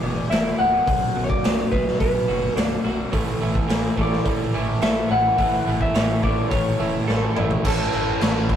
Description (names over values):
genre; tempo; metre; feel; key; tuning
quiet-loud alternative rock; 106 BPM; 4/4; straight; unclear; A4 = 440 Hz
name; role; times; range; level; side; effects
electric guitar through a small old amp; melody; 0.0-8.6 s; A4 to F#5; -23 LUFS; left 1 dB; none
twelve-string electric guitar; arpeggios; 0.0-7.6 s; B1 to A4; -28 LUFS; right 2 dB; none
overdriven semi-hollow guitar; riff; 0.0-8.6 s; B1 to A4; -29 LUFS; left 3 dB; none
growling fingered electric bass; bass; 0.0-8.6 s; B0 to A1; -29 LUFS; equal; overdrive
raw garage drum kit; drums; 0.3-8.6 s; crash cymbal, hi-hat, kick drum, snare drum, toms; -23 LUFS; equal; none
crunchy overdriven guitar; riff; 3.1-8.6 s; A2 to A4; -28 LUFS; right 5 dB; none
room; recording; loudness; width
light reverb; rough rehearsal-room recording, tube saturation; -19 LUFS; side -9 dB against mid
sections
0.0-7.6 A section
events
drum fill 7.1-7.6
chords
0.0 E; 0.9 Bm; 3.1 A